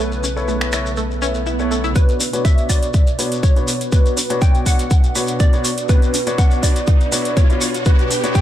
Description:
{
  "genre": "progressive house",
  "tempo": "122 BPM",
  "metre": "4/4",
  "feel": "straight",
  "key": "B minor",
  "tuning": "A4 = 440 Hz",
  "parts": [
    { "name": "plucky unison lead", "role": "melody", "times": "0.0-8.4 s", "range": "B4 to G5", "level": "-25 LUFS", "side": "right 1 dB", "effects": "dub echo" },
    { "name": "supersaw pad", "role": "sustained chords", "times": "0.0-8.4 s", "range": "B2 to B4", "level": "-29 LUFS", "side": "right 1 dB", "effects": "phaser, sidechain pumping, low-pass filter" },
    { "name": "analog pluck", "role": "arpeggios", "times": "0.0-8.4 s", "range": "A3 to C#5", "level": "-29 LUFS", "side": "right 1 dB", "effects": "analog chorus, sidechain pumping, dub echo" },
    { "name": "clear grand piano", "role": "stabs", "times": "0.0-8.4 s", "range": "B2 to E5", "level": "-24 LUFS", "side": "left 3 dB", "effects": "sidechain pumping, low-pass filter, dub echo" },
    { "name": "round analog bass", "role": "bass", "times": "0.0-1.9 s", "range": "B1", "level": "-24 LUFS", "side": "equal", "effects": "sidechain pumping" },
    { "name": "shekere", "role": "percussion", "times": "0.1-8.4 s", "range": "none", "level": "-27 LUFS", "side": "left 3 dB", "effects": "none" },
    { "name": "house drum kit", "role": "drums", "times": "0.6-8.4 s", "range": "finger snaps, hi-hat", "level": "-26 LUFS", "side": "right 3 dB", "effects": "high-pass filter on snare, sidechain pumping on hats, high-pass filter on hats, high-pass filter on room" },
    { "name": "swell and riser", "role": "sound effects", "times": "1.2-8.4 s", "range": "none", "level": "-28 LUFS", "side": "right 3 dB", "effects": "none" },
    { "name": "electronic kick drum", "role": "drums", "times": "2.0-8.4 s", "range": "none", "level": "-13 LUFS", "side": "equal", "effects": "none" }
  ],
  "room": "little or no reverb",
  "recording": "none",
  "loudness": "-14 LUFS",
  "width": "side -12 dB against mid",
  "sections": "0.0-2.0 A section; 2.0-8.4 B section",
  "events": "filter sweep on synth pluck 0.0-2.0; swell 1.2-2.0; build-up 2.0-8.4; filter sweep on grand piano 2.0-8.4; filter sweep on supersaw synth 2.0-8.4; riser 2.1-8.4",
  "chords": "0.0 Aadd9/B; 2.0 Bmadd9"
}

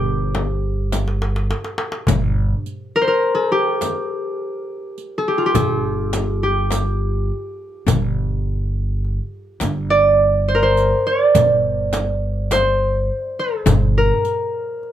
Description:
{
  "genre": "Arabic maqam ensemble",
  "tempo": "104 BPM (eighths)",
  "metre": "10/8",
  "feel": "straight",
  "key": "G maqam bayati",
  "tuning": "A4 = 441 Hz",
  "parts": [
    { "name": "concert harp", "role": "melody", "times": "0.0-14.9 s", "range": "F4 to D5", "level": "-18 LUFS", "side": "equal", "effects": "plate reverb" },
    { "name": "upright bass", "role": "bass", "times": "0.0-14.1 s", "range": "G1", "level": "-21 LUFS", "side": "equal", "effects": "none" },
    { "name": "darbuka", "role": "percussion", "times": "0.3-14.9 s", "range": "none", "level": "-24 LUFS", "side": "left 1 dB", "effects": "none" },
    { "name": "frame drum", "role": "percussion", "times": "0.3-13.9 s", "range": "none", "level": "-23 LUFS", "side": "left 4 dB", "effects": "none" },
    { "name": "riq", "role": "percussion", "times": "0.9-14.4 s", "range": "none", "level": "-27 LUFS", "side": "right 7 dB", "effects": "none" }
  ],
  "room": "light reverb",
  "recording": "none",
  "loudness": "-16 LUFS",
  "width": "side -11 dB against mid",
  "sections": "0.0-2.1 A section; 2.1-14.9 B section",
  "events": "drum fill 0.9-2.1",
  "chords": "none"
}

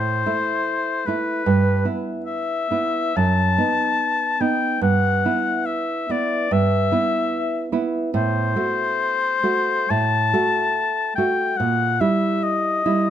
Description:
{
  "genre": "romantic duo for oboe and classical guitar",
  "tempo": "71 BPM",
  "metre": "4/4",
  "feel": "uneven beats, rubato",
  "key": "E minor",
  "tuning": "A4 = 440 Hz",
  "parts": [
    { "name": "clear oboe", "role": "melody", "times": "0.0-13.1 s", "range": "B4 to A5", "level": "-21 LUFS", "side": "left 5 dB", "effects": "none" },
    { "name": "nylon-string guitar", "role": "accompaniment", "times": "0.0-13.1 s", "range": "F#2 to F#4", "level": "-21 LUFS", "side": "right 3 dB", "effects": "none" }
  ],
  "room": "light reverb",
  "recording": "close, detailed microphones",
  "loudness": "-18 LUFS",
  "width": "side -10 dB against mid",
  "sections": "0.0-13.1 A section",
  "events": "none",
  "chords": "0.0 Am; 1.5 Em/G; 3.2 B7/F#; 4.8 Em/G; 8.1 F#dim/A; 11.6 A#dim7(no3)"
}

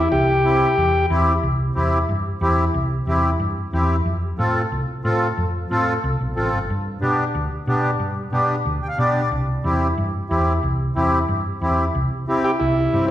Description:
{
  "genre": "latin, cumbia",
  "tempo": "183 BPM",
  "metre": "4/4",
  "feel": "straight",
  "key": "C major",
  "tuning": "A4 = 441 Hz",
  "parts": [
    { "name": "combo organ", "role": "melody", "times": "0.0-1.1, 12.4-13.1 s", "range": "E4 to G4", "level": "-19 LUFS", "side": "equal", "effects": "none" },
    { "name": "hollow-body short-scale fingered electric bass", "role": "bass", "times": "0.0-13.1 s", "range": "G1 to B2", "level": "-22 LUFS", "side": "equal", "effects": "none" },
    { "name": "accordion", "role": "accompaniment", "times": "0.4-13.1 s", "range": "B3 to G5", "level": "-21 LUFS", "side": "equal", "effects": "light tremolo tuning" }
  ],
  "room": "wet recital hall reverb, RT60 1.5 s",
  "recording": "recorded in a church or concert hall",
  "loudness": "-18 LUFS",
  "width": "side -12 dB against mid",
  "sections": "0.0-1.4 A section; 1.4-11.9 B section; 11.9-13.1 C section",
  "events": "accordion fill 8.7-9.3",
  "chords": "0.0 C; 4.1 F; 6.7 G; 9.3 C"
}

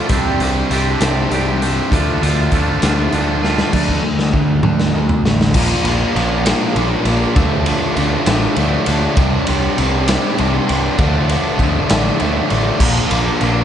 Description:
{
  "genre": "quiet-loud alternative rock",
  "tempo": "66 BPM (dotted quarters)",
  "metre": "6/8",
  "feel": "straight",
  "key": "D minor",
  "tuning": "A4 = 440 Hz",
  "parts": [
    { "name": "twangy electric guitar", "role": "arpeggios", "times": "0.0-3.7 s", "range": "C3 to G4", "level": "-22 LUFS", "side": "right 3 dB", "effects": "wide subtle chorus, analog delay, slapback echo" },
    { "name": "fuzz guitar", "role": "riff", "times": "0.0-13.6 s", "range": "Bb2 to D4", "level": "-17 LUFS", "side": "equal", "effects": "distortion" },
    { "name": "growling picked electric bass", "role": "bass", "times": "0.1-13.6 s", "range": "A1 to D2", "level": "-19 LUFS", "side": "equal", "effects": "overdrive" },
    { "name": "raw garage drum kit", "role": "drums", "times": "0.1-13.5 s", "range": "crash cymbal, hi-hat, kick drum, ride cymbal, snare drum, toms", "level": "-18 LUFS", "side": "equal", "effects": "none" }
  ],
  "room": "moderate lush hall reverb, RT60 1.9 s, small room ambience",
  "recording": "big arena sound, nothing above 10.6 kHz",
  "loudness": "-13 LUFS",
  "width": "side -9 dB against mid",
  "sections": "0.0-3.7 A section; 3.7-5.6 B section; 5.6-13.6 C section",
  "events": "drum fill 3.4-3.7, 3.7-5.6",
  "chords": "0.1 Csus2; 1.9 Dm; 3.7 D5; 5.6 Bb; 7.4 Dm; 9.2 Csus2; 11.0 Dm; 12.8 Bb"
}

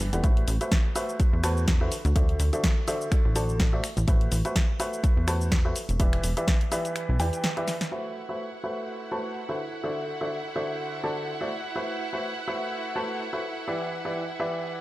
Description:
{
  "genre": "piano house",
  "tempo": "125 BPM",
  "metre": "4/4",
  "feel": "swing 56% on 16ths",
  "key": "A dorian",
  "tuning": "A4 = 443 Hz",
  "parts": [
    { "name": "clear upright piano", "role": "riff", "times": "0.0-14.8 s", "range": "D3 to A5", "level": "-30 LUFS", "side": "equal", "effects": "sidechain pumping, low-pass filter, diffuse ambient delay" },
    { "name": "plucky analog bass", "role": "bass", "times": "0.0-7.3 s", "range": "E1 to E2", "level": "-26 LUFS", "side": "equal", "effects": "sidechain pumping" },
    { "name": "house drum kit", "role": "drums", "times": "0.0-7.9 s", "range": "cabasa, finger snaps, hi-hat, snare drum", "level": "-31 LUFS", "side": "equal", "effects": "none" },
    { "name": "electronic kick drum", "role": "drums", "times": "0.2-6.6 s", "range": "none", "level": "-23 LUFS", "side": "equal", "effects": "none" },
    { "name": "warm studio violin section", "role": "sustained chords", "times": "7.9-14.8 s", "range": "E4 to F#5", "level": "-34 LUFS", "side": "right 1 dB", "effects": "sidechain pumping" }
  ],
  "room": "light reverb, digital ambience",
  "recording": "none",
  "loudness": "-24 LUFS",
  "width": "side -18 dB against mid",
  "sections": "0.0-7.9 A section; 7.9-14.8 B section",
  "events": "break 7.0-7.9; drum fill 7.7; filter sweep on upright piano 7.9-14.8",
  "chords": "0.2 Am69; 1.9 D9; 3.8 Am69; 5.8 Em7; 7.9 Am69; 9.6 D9; 11.5 Am69; 13.4 Em7"
}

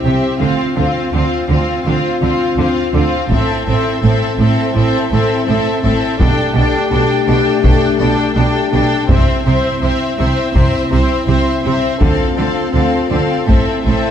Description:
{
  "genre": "cinematic, epic orchestral film score",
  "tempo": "83 BPM",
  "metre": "4/4",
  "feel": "straight",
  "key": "unclear",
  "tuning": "A4 = 442 Hz",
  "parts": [
    { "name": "rich studio violin section", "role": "melody", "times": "0.0-14.1 s", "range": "E5 to G5", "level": "-24 LUFS", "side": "left 4 dB", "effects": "none" },
    { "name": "rich studio violin section", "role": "second line", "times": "0.0-14.1 s", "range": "F4 to C5", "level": "-21 LUFS", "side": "left 1 dB", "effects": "none" },
    { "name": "rich symphonic viola section", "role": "accompaniment", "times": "0.0-14.1 s", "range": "C4 to D4", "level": "-20 LUFS", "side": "equal", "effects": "none" },
    { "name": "mellow French horn section", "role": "sustained chords", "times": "0.0-14.1 s", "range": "A3 to G4", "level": "-20 LUFS", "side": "left 4 dB", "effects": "none" },
    { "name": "rich symphonic cello section", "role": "bass", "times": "0.0-13.9 s", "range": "A2 to D3", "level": "-20 LUFS", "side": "right 2 dB", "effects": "none" },
    { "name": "warm symphonic double bass section", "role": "bass", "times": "0.1-13.9 s", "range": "A1 to D2", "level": "-18 LUFS", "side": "right 3 dB", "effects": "none" },
    { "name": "taiko ensemble", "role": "drums", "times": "3.3-14.1 s", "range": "none", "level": "-16 LUFS", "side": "equal", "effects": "none" },
    { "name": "reverse cymbal", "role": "sound effects", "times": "13.8-14.1 s", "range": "none", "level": "-38 LUFS", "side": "left 2 dB", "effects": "none" }
  ],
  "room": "moderate concert hall reverb, RT60 2.3 s",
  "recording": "dark, warm production",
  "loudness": "-12 LUFS",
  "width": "side -9 dB against mid",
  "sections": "0.0-14.1 A section",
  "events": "none",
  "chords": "0.4 Dm7; 3.3 Am; 6.2 Gadd9/B; 9.1 C; 12.0 Dm7; 13.5 Am"
}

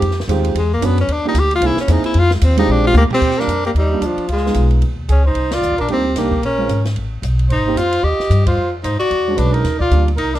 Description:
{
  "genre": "jazz, small-group swing and bop",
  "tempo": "224 BPM",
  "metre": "4/4",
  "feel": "swing 60% on 8ths",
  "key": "Eb major",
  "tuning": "A4 = 440 Hz",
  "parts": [
    { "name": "clear tenor saxophone", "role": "melody", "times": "0.0-10.4 s", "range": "F3 to G4", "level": "-18 LUFS", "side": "left 2 dB", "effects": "plate reverb" },
    { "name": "upright bass", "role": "bass", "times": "0.0-10.4 s", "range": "Ab1 to Ab2", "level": "-16 LUFS", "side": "equal", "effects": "none" },
    { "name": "compact cocktail drum kit", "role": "drums", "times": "0.0-10.4 s", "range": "crash cymbal, hi-hat, kick drum, ride cymbal, snare drum, toms", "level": "-27 LUFS", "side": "equal", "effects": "none" },
    { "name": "warm grand piano", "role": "accompaniment", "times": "0.3-10.1 s", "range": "G3 to B4", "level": "-21 LUFS", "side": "right 4 dB", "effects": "none" },
    { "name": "breathy trumpet", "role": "second line", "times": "3.0-10.4 s", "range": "D4 to Eb5", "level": "-23 LUFS", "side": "right 4 dB", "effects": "none" }
  ],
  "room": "light reverb",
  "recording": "dark, warm production",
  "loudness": "-14 LUFS",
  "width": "side -13 dB against mid",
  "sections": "0.0-3.2 A section; 3.2-10.4 B section",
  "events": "tenor saxophone solo 0.0-3.2; drum fill 2.7-3.2; band accent 5.5, 8.4",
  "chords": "0.0 Fm7; 0.6 Esus2; 1.1 Ebmaj9; 1.6 C7alt; 2.1 Fm7; 2.7 Bb13; 3.2 Ebmaj9; 4.3 Db9; 5.4 Cm9; 6.4 Bbm7; 7.0 Asus2; 7.5 Abmaj7; 8.6 Fm; 9.1 E13; 9.6 Ebmaj9"
}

